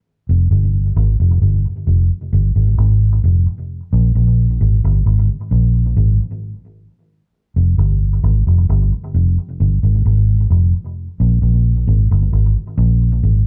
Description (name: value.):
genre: reggae.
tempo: 66 BPM.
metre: 4/4.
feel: straight.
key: F minor.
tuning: A4 = 440 Hz.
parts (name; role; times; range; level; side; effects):
vintage muted fingered electric bass; solo; 0.3-13.5 s; F1 to Bb1; -15 LUFS; equal; analog delay.
room: wet studio ambience, RT60 0.5 s.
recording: dark, warm production.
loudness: -15 LUFS.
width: mono.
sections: 0.0-13.5 A section.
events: none.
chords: none.